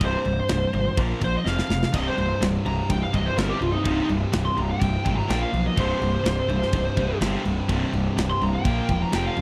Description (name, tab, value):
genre	heavy metal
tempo	125 BPM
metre	4/4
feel	straight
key	unclear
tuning	A4 = 439 Hz
part	high-gain lead guitar	melody	0.0-9.4 s	Eb4 to C6	-29 LUFS	equal	distortion, slapback echo
part	heavy high-gain guitar	riff	0.0-9.4 s	C2 to Bb3	-29 LUFS	equal	distortion
part	fuzz picked electric bass	bass	0.0-9.4 s	C1 to B1	-29 LUFS	equal	overdrive
part	tight metal drum kit	drums	0.0-9.4 s	crash cymbal, kick drum, snare drum, splash cymbal	-30 LUFS	equal	none
part	tight distorted guitar	riff	1.9-9.4 s	C2 to Bb3	-34 LUFS	equal	distortion
room	small room ambience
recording	dry, close 1970s-style studio recording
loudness	-24 LUFS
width	mono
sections	0.0-9.4 A section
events	lead electric guitar solo 0.0-9.4; drum fill 1.5-1.9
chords	0.0 C5; 1.0 Bb5; 1.5 F5; 1.9 C5; 5.3 Bb5; 5.8 C5; 8.6 Bb5